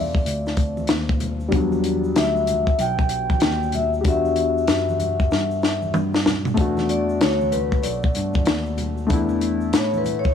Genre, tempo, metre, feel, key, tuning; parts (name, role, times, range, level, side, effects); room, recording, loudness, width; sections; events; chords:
hip hop, jazz-hop; 95 BPM; 4/4; swing 63% on 16ths; E minor; A4 = 436 Hz
vibraphone with soft mallets; melody; 0.0-10.3 s; B4 to G5; -24 LUFS; left 2 dB; tape echo
dark upright piano; accompaniment; 0.0-10.3 s; F#3 to G4; -25 LUFS; left 3 dB
tine electric piano; bass; 0.0-10.3 s; B1 to A2; -27 LUFS; left 1 dB; tube saturation, wide subtle chorus
compact cocktail drum kit; drums; 0.1-10.3 s; hi-hat, kick drum, snare drum, toms; -22 LUFS; left 1 dB
tube shaker and congas; percussion; 0.2-10.3 s; -34 LUFS; right 1 dB
studio reverb; dry, gritty hardware recording; -18 LUFS; side -8 dB against mid
0.0-6.6 A section; 6.6-10.3 B section
drum fill 5.3-6.6; vibraphone solo 6.6-10.3
0.0 Dm9; 1.5 Em9; 6.6 E9sus4